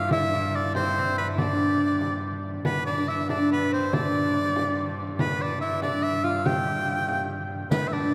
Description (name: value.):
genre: medieval dance.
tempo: 95 BPM (dotted quarters).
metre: 6/8.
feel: straight.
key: G mixolydian.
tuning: A4 = 436 Hz.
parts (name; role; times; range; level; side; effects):
bright shawm; melody; 0.0-8.1 s; B4 to G5; -29 LUFS; equal; slapback echo.
lute; second line; 0.0-8.1 s; B3 to G4; -30 LUFS; equal; none.
rich viola da gamba; drone; 0.0-8.1 s; G2; -35 LUFS; equal; none.
frame drum; percussion; 0.1-8.0 s; none; -34 LUFS; equal; none.
riq; percussion; 7.7-7.9 s; none; -34 LUFS; equal; none.
room: wet cathedral reverb, RT60 5.0 s.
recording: heard from further back in the room.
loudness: -26 LUFS.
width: mono.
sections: 0.0-7.7 A section.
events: none.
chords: none.